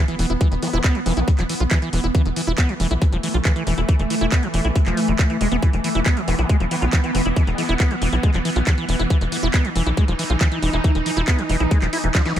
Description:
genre	psychedelic trance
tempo	138 BPM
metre	4/4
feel	straight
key	unclear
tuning	A4 = 440 Hz
part	swarming drone	sustained chords	0.0-12.4 s	E3 to D#4	-25 LUFS	right 1 dB	built-in reverb, sidechain pumping
part	liquid acid bass	riff	0.0-12.4 s	D#3 to F4	-25 LUFS	equal	chorus, auto-pan, cassette tape, sidechain pumping, tape echo
part	drum and bass drum kit	drums	0.1-12.4 s	handclaps, hi-hat, snare drum	-27 LUFS	equal	none
part	tight sequencer bass	bass	0.2-12.4 s	E1 to B1	-21 LUFS	equal	none
part	electronic kick drum	drums	0.4-12.2 s	none	-17 LUFS	equal	none
part	vowel-sweep wobble bass	second line	0.6-1.2, 6.3-7.7 s	G#3 to B3	-33 LUFS	left 4 dB	wide subtle chorus, sidechain pumping, high-pass filter, tape echo
room	digital ambience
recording	none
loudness	-17 LUFS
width	side -11 dB against mid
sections	0.0-12.4 A section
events	drum fill 12.1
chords	0.0 E5

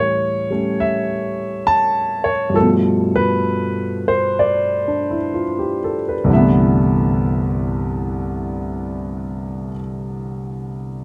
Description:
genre	solo jazz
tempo	60-71 BPM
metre	4/4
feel	swing 67% on 8ths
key	C major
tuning	A4 = 439 Hz
part	warm grand piano	solo	0.0-11.0 s	C2 to A5	-19 LUFS	equal	none
room	moderate club reverb, RT60 0.6 s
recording	none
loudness	-19 LUFS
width	mono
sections	0.0-6.3 A section; 6.3-10.3 B section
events	slowing down 0.0-6.3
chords	0.0 A7; 2.6 G9; 6.3 Cmaj13

